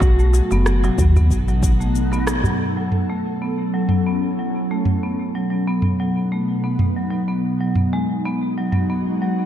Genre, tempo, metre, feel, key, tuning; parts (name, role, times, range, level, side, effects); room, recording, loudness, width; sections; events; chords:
organic downtempo; 93 BPM; 4/4; swing 54% on 16ths; F# dorian; A4 = 440 Hz
electric slide guitar; melody; 0.0-2.2 s; F#4; -28 LUFS; left 2 dB; ping-pong delay
ethereal airy pad; sustained chords; 0.0-9.5 s; B2 to B4; -25 LUFS; equal; ensemble chorus, built-in reverb, sidechain pumping
woody FM bass; bass; 0.0-2.5 s; F#1 to D#2; -17 LUFS; equal
afro-pop drum kit; drums; 0.0-8.9 s; rim click, shaker, toms; -23 LUFS; right 1 dB
electronic kick drum; drums; 0.0-1.8 s; -19 LUFS; equal
darbuka; percussion; 0.0-2.6 s; -28 LUFS; right 2 dB
marimba with medium hard mallets; arpeggios; 0.2-9.4 s; F#3 to B3; -22 LUFS; equal; low-pass filter, digital delay
moderate concert hall reverb, RT60 2.2 s; dark, warm production; -17 LUFS; side -10 dB against mid
0.0-2.6 A section; 2.6-9.5 B section
filter sweep on marimba 0.0-2.6; band accent 2.3-2.6
0.0 B7; 2.6 F#m7; 5.2 B7; 7.8 G#m7